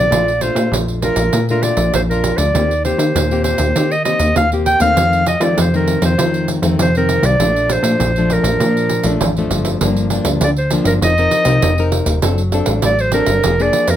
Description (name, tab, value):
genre	samba and choro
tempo	99 BPM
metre	4/4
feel	straight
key	Bb major, G minor from 9.8 s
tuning	A4 = 438 Hz
part	clear clarinet	melody	0.0-14.0 s	Bb4 to G5	-17 LUFS	right 1 dB	none
part	nylon-string guitar	accompaniment	0.0-14.0 s	F2 to Bb4	-20 LUFS	left 3 dB	none
part	plucky analog bass	bass	0.0-14.0 s	Eb1 to F3	-17 LUFS	equal	none
part	pandeiro	percussion	0.1-14.0 s	none	-21 LUFS	right 5 dB	none
room	light reverb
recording	none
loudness	-13 LUFS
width	side -11 dB against mid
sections	0.0-9.8 A section; 9.8-14.0 B section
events	none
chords	0.1 Bbmaj7; 2.5 Eb6; 5.0 F7; 7.4 Bbmaj7; 9.8 Gm7; 11.0 F7sus4; 12.2 D7/F#; 13.4 Bb7/F